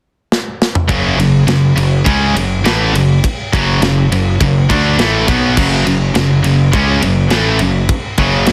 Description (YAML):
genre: heavy metal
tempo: 103 BPM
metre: 4/4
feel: straight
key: F# minor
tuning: A4 = 439 Hz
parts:
  - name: tight metal drum kit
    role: drums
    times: 0.3-8.5 s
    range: crash cymbal, kick drum, ride cymbal, snare drum, toms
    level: -20 LUFS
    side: equal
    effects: soft clipping on kick
  - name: high-gain distorted guitar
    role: riff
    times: 0.9-8.5 s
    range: F#2 to D4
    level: -17 LUFS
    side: equal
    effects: distortion
  - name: high-gain distorted guitar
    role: riff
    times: 0.9-8.5 s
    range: F#2 to D4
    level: -19 LUFS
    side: equal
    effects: distortion
  - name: fuzz picked electric bass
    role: bass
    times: 0.9-8.5 s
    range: F#1 to D2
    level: -19 LUFS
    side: equal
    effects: overdrive
room: light reverb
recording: dense, heavily limited modern master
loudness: -13 LUFS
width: mono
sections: 0.9-8.5 A section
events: drum fill 0.3-0.9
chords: 0.0 N.C.; 0.9 F#m